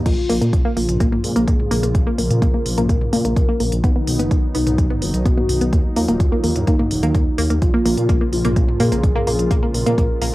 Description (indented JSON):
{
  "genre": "melodic techno",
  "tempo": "127 BPM",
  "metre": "4/4",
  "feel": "straight",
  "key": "Bb phrygian",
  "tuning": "A4 = 440 Hz",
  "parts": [
    { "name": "dark detuned saw bass", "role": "bass", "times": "0.0-10.3 s", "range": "Eb1 to Bb2", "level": "-22 LUFS", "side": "equal", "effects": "sidechain pumping" },
    { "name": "soft octave-layered synth lead", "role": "melody", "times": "0.1-10.3 s", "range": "D#4 to Bb4", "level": "-24 LUFS", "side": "left 1 dB", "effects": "chorus, phaser, vintage 12-bit sampler grit, sidechain pumping, cassette tape, tape echo" },
    { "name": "warm analog pad", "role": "sustained chords", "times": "0.1-10.3 s", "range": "Db3 to F4", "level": "-28 LUFS", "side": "equal", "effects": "wide subtle chorus, sidechain pumping, cassette tape" },
    { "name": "wide unison pluck", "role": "arpeggios", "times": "0.1-10.3 s", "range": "Bb3 to B3", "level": "-22 LUFS", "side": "equal", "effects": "sidechain pumping, cassette tape, tape echo" },
    { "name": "deep house drum kit", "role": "drums", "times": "0.1-10.3 s", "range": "crash cymbal, hi-hat, toms", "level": "-28 LUFS", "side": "equal", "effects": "small room ambience, cassette tape" },
    { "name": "electronic kick drum", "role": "drums", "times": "0.1-10.1 s", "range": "none", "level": "-18 LUFS", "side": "equal", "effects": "small room ambience, cassette tape" }
  ],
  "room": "light reverb",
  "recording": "home recording on cassette",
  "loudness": "-15 LUFS",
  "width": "side -18 dB against mid",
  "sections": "0.0-10.3 A section",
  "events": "filter sweep on synth arpeggio sound 0.0-10.3",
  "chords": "0.1 Bbm; 3.8 B; 5.7 Ebm; 7.6 Bbm"
}